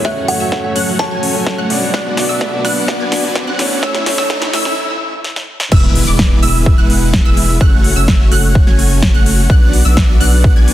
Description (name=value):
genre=EDM, festival progressive house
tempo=127 BPM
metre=4/4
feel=straight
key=unclear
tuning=A4 = 438 Hz
part: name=kalimba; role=melody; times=0.0-1.7 s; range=E5 to A5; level=-20 LUFS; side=right 1 dB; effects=digital delay
part: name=clear concert grand piano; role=accompaniment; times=0.0-4.6 s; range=A2 to D5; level=-21 LUFS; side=left 1 dB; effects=sidechain pumping, digital delay
part: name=lush unison pad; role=sustained chords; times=0.0-10.7 s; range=F#2 to B4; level=-26 LUFS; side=equal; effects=chorus, sidechain pumping
part: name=wide unison pluck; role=arpeggios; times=0.0-10.7 s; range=D6 to G#6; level=-23 LUFS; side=right 1 dB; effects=wide subtle chorus, sidechain pumping, digital delay
part: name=dense compressed supersaw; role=riff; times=0.0-10.7 s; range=G#3 to G#5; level=-20 LUFS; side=equal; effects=sidechain pumping, low-pass filter, digital delay
part: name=big-room dance drum kit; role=drums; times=0.0-10.7 s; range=crash cymbal, hi-hat, snare drum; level=-19 LUFS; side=equal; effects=overdrive, high-pass filter on hats, high-pass filter on toms, high-pass filter on snare, high-pass filter on cymbals
part: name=electronic kick drum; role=drums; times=0.0-10.5 s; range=none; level=-11 LUFS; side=equal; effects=overdrive, high-pass filter on kick
part: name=riser and impact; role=sound effects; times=0.3-7.6 s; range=none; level=-24 LUFS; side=equal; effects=none
part: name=saturated sub bass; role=bass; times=5.7-10.7 s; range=E1 to B1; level=-14 LUFS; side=equal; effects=sidechain pumping
room=light reverb, digital ambience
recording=dense, heavily limited modern master, high-pass filter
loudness=-10 LUFS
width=side -13 dB against mid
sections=0.0-5.7 A section; 5.7-10.7 B section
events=build-up 0.0-5.7; drum fill 0.0-4.8, 5.2-5.7; riser 0.3-4.8; filter sweep 0.0-5.7; break 4.8-5.7; drop 5.7-10.7; impact 5.7-7.6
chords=0.0 F#m; 1.9 Bm; 3.8 A; 5.7 E; 7.6 F#m; 9.5 Bm